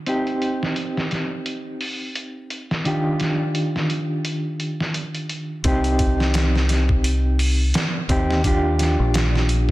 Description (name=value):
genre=trip hop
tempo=86 BPM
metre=4/4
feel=swing 57% on 16ths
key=C minor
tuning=A4 = 440 Hz
part: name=mellow electric guitar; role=accompaniment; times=0.0-9.7 s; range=Eb3 to G4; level=-24 LUFS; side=equal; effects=tremolo, tape echo
part: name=trip hop sampler-style drum kit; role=drums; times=0.1-9.7 s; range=hi-hat, kick drum, snare drum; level=-24 LUFS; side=equal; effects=low-pass filter on hats, small room reverb, low-pass filter on snare, low-pass filter on kick
part: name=deep dub fingered electric bass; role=bass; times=5.6-9.7 s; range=Bb1 to Eb2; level=-20 LUFS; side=equal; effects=tube saturation
room=light reverb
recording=dense, heavily limited modern master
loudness=-19 LUFS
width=side -17 dB against mid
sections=0.0-5.7 A section; 5.7-9.7 B section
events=none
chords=0.1 Cm; 2.9 Ebmaj7; 5.7 Cm; 8.4 Ebmaj7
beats=| 0.07 0.77 1.47 2.17 | 2.86 3.56 4.26 4.96 | 5.65 6.35 7.05 7.75 | 8.45 9.14